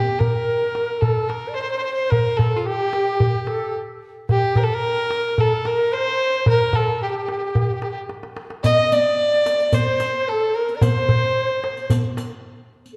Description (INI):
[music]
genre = Turkish makam ensemble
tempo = 110 BPM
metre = 4/4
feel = straight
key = G makam ussak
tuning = A4 = 444 Hz
[part]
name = warm fiddle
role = melody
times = 0.0-11.9 s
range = F4 to Eb5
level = -24 LUFS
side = equal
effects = none
[part]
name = breathy bright ney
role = second line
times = 0.0-13.0 s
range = G4 to Eb5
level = -27 LUFS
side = equal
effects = none
[part]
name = darbuka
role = percussion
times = 0.2-12.3 s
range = none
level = -23 LUFS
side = equal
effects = none
[part]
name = riq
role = percussion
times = 8.6-12.9 s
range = none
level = -34 LUFS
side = equal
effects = none
[sound]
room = wet scoring stage reverb, RT60 1.6 s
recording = dark, warm production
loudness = -20 LUFS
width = mono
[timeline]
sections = 0.0-13.0 A section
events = drum fill 8.1-8.6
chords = none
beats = 0.48 1.02 1.57 | 2.11 2.66 3.20 3.75 | 4.29 4.83 5.38 5.92 | 6.47 7.01 7.56 8.10 | 8.64 9.19 9.73 10.27 | 10.82 11.36 11.90 12.45